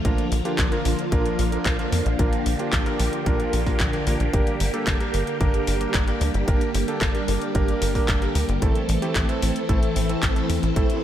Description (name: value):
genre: italo disco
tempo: 112 BPM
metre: 4/4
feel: straight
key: unclear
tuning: A4 = 440 Hz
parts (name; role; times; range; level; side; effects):
- phased string machine; sustained chords; 0.0-11.0 s; D3 to A4; -26 LUFS; equal; ensemble chorus, phaser
- warm electric grand piano; stabs; 0.0-11.0 s; A3 to Bb4; -28 LUFS; right 3 dB; tape echo
- tight sequencer bass; bass; 0.0-10.9 s; G1 to F2; -25 LUFS; equal; none
- electronic kick drum; drums; 0.0-10.9 s; none; -23 LUFS; equal; none
- house drum kit; drums; 0.1-11.0 s; handclaps, hi-hat; -30 LUFS; left 1 dB; none
- noise sweep; sound effects; 10.9-11.0 s; none; -36 LUFS; left 4 dB; none
room: light reverb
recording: none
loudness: -20 LUFS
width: side -11 dB against mid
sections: 0.0-11.0 A section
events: none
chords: 0.0 Bb; 4.3 Gm; 8.6 Am